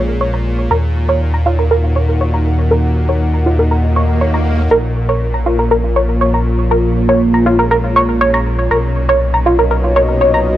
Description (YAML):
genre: techno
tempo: 120 BPM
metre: 4/4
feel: straight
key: Bb phrygian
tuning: A4 = 440 Hz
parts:
  - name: dark analog pad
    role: sustained chords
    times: 0.0-10.6 s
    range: Bb3 to Gb5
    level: -18 LUFS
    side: equal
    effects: chorus
  - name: dark detuned saw bass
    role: bass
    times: 0.0-10.6 s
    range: Bb1 to Eb2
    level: -16 LUFS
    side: equal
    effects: none
  - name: bowed-like drone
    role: drone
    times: 0.0-10.6 s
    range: Bb2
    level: -23 LUFS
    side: left 1 dB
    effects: built-in reverb
  - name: tight sequenced synth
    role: arpeggios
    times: 0.2-10.4 s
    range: F4 to Bb5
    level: -15 LUFS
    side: right 1 dB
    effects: chorus, phaser, tape echo
  - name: swell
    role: sound effects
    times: 3.9-4.7 s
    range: none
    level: -26 LUFS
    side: right 2 dB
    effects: none
room: light reverb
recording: dry, gritty hardware recording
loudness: -11 LUFS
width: side -13 dB against mid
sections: 0.0-10.6 A section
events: filter sweep on synth arpeggio sound 0.0-10.6; swell 3.9-4.7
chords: 0.0 Bbm7; 0.7 Ebmadd9; 4.7 Bbm7; 8.7 Bmaj7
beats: 0.21 | 0.71 1.21 1.71 2.21 | 2.71 3.21 3.71 4.21 | 4.71 5.21 5.71 6.21 | 6.71 7.21 7.71 8.21 | 8.71 9.21 9.71 10.21